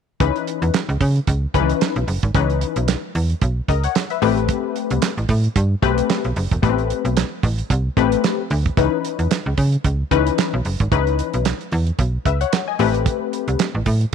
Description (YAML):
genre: early-eighties boogie funk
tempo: 112 BPM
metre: 4/4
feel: swing 56% on 16ths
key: unclear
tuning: A4 = 440 Hz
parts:
  - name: funky polysynth comp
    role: accompaniment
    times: 0.2-13.7 s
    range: D#3 to G#5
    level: -21 LUFS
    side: left 13 dB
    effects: chorus
  - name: slap-like FM bass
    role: bass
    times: 0.2-14.1 s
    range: E1 to C#3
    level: -19 LUFS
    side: right 1 dB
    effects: none
  - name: damped 70s drum kit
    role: drums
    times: 0.2-14.1 s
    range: handclaps, hi-hat, kick drum, snare drum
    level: -22 LUFS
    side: right 5 dB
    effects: none
room: light reverb, small room reverb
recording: 1960s-style stereo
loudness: -17 LUFS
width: side -7 dB against mid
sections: 0.2-14.1 A section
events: none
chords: 0.2 C#m9; 4.2 Am9; 8.8 C#m9; 12.8 Am9